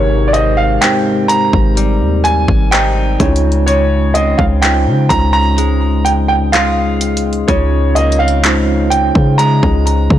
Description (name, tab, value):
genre	contemporary R&B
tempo	63 BPM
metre	4/4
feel	straight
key	unclear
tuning	A4 = 440 Hz
part	warm baby grand piano	melody	0.0-10.2 s	Db5 to Bb5	-16 LUFS	right 3 dB	digital delay
part	mellow tine electric piano	accompaniment	0.0-10.2 s	C3 to Db5	-18 LUFS	right 2 dB	fast stereo tremolo
part	direct-recorded clean electric guitar	arpeggios	0.0-10.2 s	Ab2 to F4	-21 LUFS	left 8 dB	wide subtle chorus, digital delay
part	warm 808-style bass	bass	0.0-10.2 s	Ab1 to Db3	-14 LUFS	equal	none
part	trap drum kit	drums	0.3-10.2 s	handclaps, hi-hat, kick drum	-16 LUFS	equal	overdrive, vintage 12-bit sampler grit
room	little or no reverb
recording	blown-out, overdriven recording, overdrive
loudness	-10 LUFS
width	side -11 dB against mid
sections	0.0-10.2 A section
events	none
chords	0.0 Abmaj7; 3.2 Dbmaj7